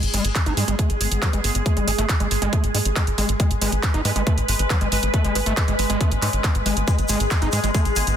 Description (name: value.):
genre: psychedelic trance.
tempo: 138 BPM.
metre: 4/4.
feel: straight.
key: G# phrygian.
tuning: A4 = 440 Hz.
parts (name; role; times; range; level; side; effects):
pulsing gated texture; sustained chords; 0.0-8.2 s; G#3 to B4; -26 LUFS; equal; chorus, built-in reverb, sidechain pumping.
overdriven acid bass; riff; 0.0-7.8 s; F#3 to D#4; -28 LUFS; moving between left 7 dB and right 6 dB; distortion, auto-pan, sidechain pumping, ping-pong delay.
tight sequencer bass; bass; 0.0-8.1 s; G#1 to G#2; -23 LUFS; equal; none.
techno drum kit; drums; 0.0-8.2 s; handclaps, hi-hat; -26 LUFS; right 1 dB; overdrive, studio ambience.
electronic kick drum; drums; 0.4-7.8 s; none; -21 LUFS; equal; studio ambience.
vowel-sweep wobble bass; second line; 0.5-8.2 s; G#3 to C#4; -40 LUFS; left 2 dB; none.
tube shaker; percussion; 6.9-8.2 s; none; -32 LUFS; equal; none.
room: little or no reverb.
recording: dense, heavily limited modern master.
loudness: -18 LUFS.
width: side -9 dB against mid.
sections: 0.0-8.2 A section.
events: filter sweep on acid bass 0.0-8.2.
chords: 0.0 G#5.